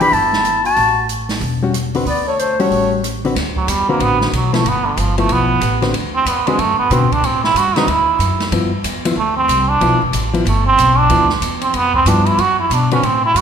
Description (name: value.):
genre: jazz, small-group swing and bop.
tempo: 186 BPM.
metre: 4/4.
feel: swing 63% on 8ths.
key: D mixolydian.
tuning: A4 = 442 Hz.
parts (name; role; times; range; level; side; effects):
breathy clarinet; melody; 0.0-2.9 s; C5 to B5; -16 LUFS; left 4 dB; none.
trombone with metal mute; second line; 0.0-13.4 s; D3 to G4; -16 LUFS; right 4 dB; none.
hollow-body jazz guitar; accompaniment; 0.0-13.0 s; D3 to B4; -21 LUFS; left 3 dB; none.
upright bass; bass; 0.0-13.4 s; E1 to B2; -20 LUFS; equal; none.
open jazz drum kit; drums; 0.0-13.4 s; hi-hat, kick drum, ride cymbal, rim click, snare drum; -24 LUFS; equal; none.
room: moderate concert hall reverb, RT60 2.1 s.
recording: recorded in a church or concert hall.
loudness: -13 LUFS.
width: side -7 dB against mid.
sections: 0.0-3.4 A section; 3.4-13.4 B section.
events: trombone solo 3.4-13.4.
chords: 0.0 Em7; 0.8 A5; 2.1 D; 2.7 A13; 3.4 D13; 4.6 G13; 5.9 D13; 7.2 Am7; 7.9 Dadd9; 8.5 G13; 12.4 D6 (rootless).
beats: 0.12 0.45 | 0.77 1.09 1.42 1.74 | 2.06 2.38 2.71 3.03 | 3.35 3.68 4.00 4.32 | 4.65 4.97 5.29 5.62 | 5.94 6.26 6.58 6.91 | 7.23 7.55 7.88 8.20 | 8.52 8.84 9.16 9.49 | 9.81 10.13 10.45 10.78 | 11.10 11.42 11.74 12.06 | 12.38 12.71 13.03 13.35.